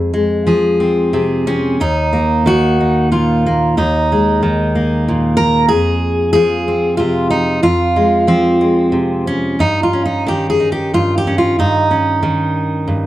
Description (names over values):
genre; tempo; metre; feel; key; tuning
folk, solo fingerstyle acoustic guitar; 92 BPM; 3/4; rubato; unclear; A4 = 440 Hz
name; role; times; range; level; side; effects
fingerpicked steel-string acoustic guitar; solo; 0.0-13.1 s; Eb2 to Bb4; -12 LUFS; equal; none
room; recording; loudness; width
light reverb; dark, warm production; -12 LUFS; side -14 dB against mid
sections
0.0-1.8 A section; 1.8-13.1 B section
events
none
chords
0.0 Fm; 1.8 Ebm; 5.7 Fm; 9.6 Eb7/G